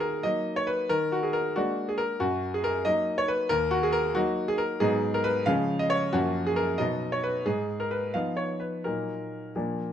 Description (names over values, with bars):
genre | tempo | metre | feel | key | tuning
classical-period piano sonatina | 91 BPM (dotted quarters) | 6/8 | rubato | Eb minor | A4 = 441 Hz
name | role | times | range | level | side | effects
clear grand piano | solo | 0.0-9.9 s | Eb2 to F5 | -25 LUFS | equal | none
room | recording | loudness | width
light reverb | close, detailed microphones | -25 LUFS | side -9 dB against mid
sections
0.0-9.9 A section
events
none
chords
0.0 Ebm; 0.9 Bb7/Eb; 2.2 Ebm/Gb; 3.5 Ebm; 4.8 Abm7; 5.5 Db; 6.1 Gbmaj7; 6.8 B; 7.5 Fm7b5/Ab; 8.8 Ebm/Bb